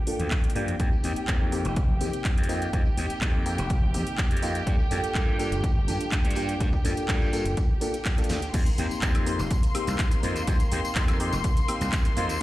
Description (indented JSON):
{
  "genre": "filtered disco house",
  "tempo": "124 BPM",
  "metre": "4/4",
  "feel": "straight",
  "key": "F mixolydian",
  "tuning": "A4 = 440 Hz",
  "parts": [
    { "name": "muted studio string section", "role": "sustained chords", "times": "0.0-12.4 s", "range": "Bb3 to C6", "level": "-34 LUFS", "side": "equal", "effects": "sidechain pumping, low-pass filter" },
    { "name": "bright reed electric piano", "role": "accompaniment", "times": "0.1-12.4 s", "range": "Bb3 to A4", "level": "-32 LUFS", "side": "left 1 dB", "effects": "phaser, sidechain pumping, low-pass filter" },
    { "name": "house drum kit", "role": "drums", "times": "0.1-12.4 s", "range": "crash cymbal, handclaps, hi-hat, shaker, snare drum, woodblock", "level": "-34 LUFS", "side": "equal", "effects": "none" },
    { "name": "gritty slap bass", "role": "bass", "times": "0.2-12.4 s", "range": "F1 to G2", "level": "-29 LUFS", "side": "equal", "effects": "overdrive, tube saturation, sidechain pumping, low-pass filter" },
    { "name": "electronic kick drum", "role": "drums", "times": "0.3-12.0 s", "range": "none", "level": "-25 LUFS", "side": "equal", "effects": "none" },
    { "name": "tambourine", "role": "percussion", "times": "0.8-12.4 s", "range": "none", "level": "-44 LUFS", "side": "left 3 dB", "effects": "sidechain pumping on perc, low-pass filter on perc" }
  ],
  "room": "light reverb, digital ambience",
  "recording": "played on a big sound system in a bare room, large studio reverb",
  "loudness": "-23 LUFS",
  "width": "side -16 dB against mid",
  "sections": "0.0-8.5 A section; 8.5-12.4 B section",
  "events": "filter sweep 0.0-8.5; drum fill 8.3; drop 8.5-12.4",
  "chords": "0.0 Gm7; 0.8 F9sus4; 4.7 Gm7; 8.5 F9sus4",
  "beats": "0.31 | 0.80 1.28 1.77 2.25 | 2.73 3.22 3.70 4.18 | 4.67 5.15 5.64 6.12 | 6.61 7.09 7.57 8.06 | 8.54 9.02 9.51 9.99 | 10.48 10.96 11.44 11.93 | 12.41"
}